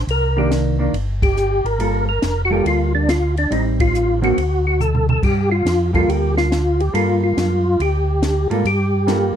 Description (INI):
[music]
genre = soul jazz organ trio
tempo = 140 BPM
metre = 4/4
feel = swing 66% on 8ths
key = G minor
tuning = A4 = 441 Hz
[part]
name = mellow tonewheel organ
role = bass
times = 0.0-9.3 s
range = F1 to Ab2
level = -19 LUFS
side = equal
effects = chorus vibrato, slow rotary speaker
[part]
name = percussive tonewheel organ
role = melody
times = 0.1-9.3 s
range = D4 to Bb4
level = -19 LUFS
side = equal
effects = slow rotary speaker, chorus vibrato
[part]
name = compact cocktail drum kit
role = drums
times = 0.1-9.2 s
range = crash cymbal, hi-hat, kick drum, ride cymbal, snare drum, toms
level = -24 LUFS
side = equal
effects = none
[part]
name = hollow-body jazz guitar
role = accompaniment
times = 0.4-9.4 s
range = D3 to A4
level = -21 LUFS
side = right 2 dB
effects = none
[sound]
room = light reverb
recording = dark, warm production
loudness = -15 LUFS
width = side -9 dB against mid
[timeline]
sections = 0.0-5.2 A section; 5.2-9.4 A section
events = band accent 1.2, 3.7; drum fill 4.8-5.2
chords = 0.1 Cm9; 1.8 Gm9; 3.5 Am7b5; 4.4 D; 5.2 Gm9